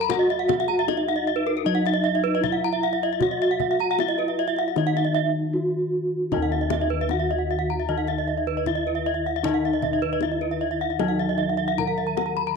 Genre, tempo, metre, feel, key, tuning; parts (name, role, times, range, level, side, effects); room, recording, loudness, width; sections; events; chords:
Balinese gamelan; 77 BPM; 4/4; straight; Eb pelog; A4 = 440 Hz
gamelan-type bronze metallophone; melody; 0.0-12.6 s; Eb4 to Bb4-30c; -27 LUFS; right 1 dB; tape echo
gamelan-type bronze metallophone; arpeggios; 0.0-12.6 s; Bb4-30c to Cb6-20c; -27 LUFS; left 11 dB
gamelan-type bossed gongs; bass; 0.0-12.6 s; Eb2 to Gb4-30c; -28 LUFS; left 1 dB
kendang; percussion; 0.1-12.4 s; -32 LUFS; left 13 dB
gamelan-type bronze metallophone; arpeggios; 0.2-12.4 s; Cb5-20c to Bb5-30c; -27 LUFS; right 13 dB
gamelan-type bronze metallophone; accompaniment; 6.3-12.6 s; Eb3; -34 LUFS; left 2 dB
light reverb, small room ambience; 1960s-style stereo with parts hard left and right; -21 LUFS; side -5 dB against mid
0.0-12.6 A section
drum fill 5.4-6.3